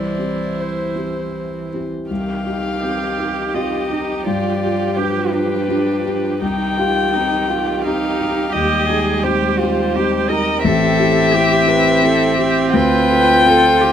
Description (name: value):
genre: classical, slow romantic movement for piano quintet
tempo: 85 BPM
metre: 3/4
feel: uneven beats, rubato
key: C minor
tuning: A4 = 441 Hz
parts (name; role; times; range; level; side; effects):
- dark violin; melody; 0.0-13.9 s; B4 to G5; -19 LUFS; left 4 dB; none
- warm cello; second line; 0.0-13.9 s; E3 to B4; -22 LUFS; right 7 dB; none
- warm violin; second line; 0.0-13.9 s; F4 to C5; -25 LUFS; left 1 dB; none
- dark grand piano; accompaniment; 0.0-13.9 s; A1 to A4; -20 LUFS; left 2 dB; none
- warm viola; accompaniment; 0.0-13.9 s; Eb3 to E4; -24 LUFS; right 4 dB; none
room: little or no reverb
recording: close, detailed microphones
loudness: -15 LUFS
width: side -9 dB against mid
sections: 0.0-2.1 A section; 2.1-13.9 B section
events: none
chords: 0.0 C; 2.1 Cm; 4.3 G7; 6.4 Cm; 8.5 Cm/Eb; 10.6 Am7; 12.7 Dm7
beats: 0.57 1.34 | 2.10 2.82 3.52 | 4.25 4.97 5.68 | 6.42 7.14 7.84 | 8.53 9.24 9.95 | 10.64 11.33 12.02 | 12.74 13.45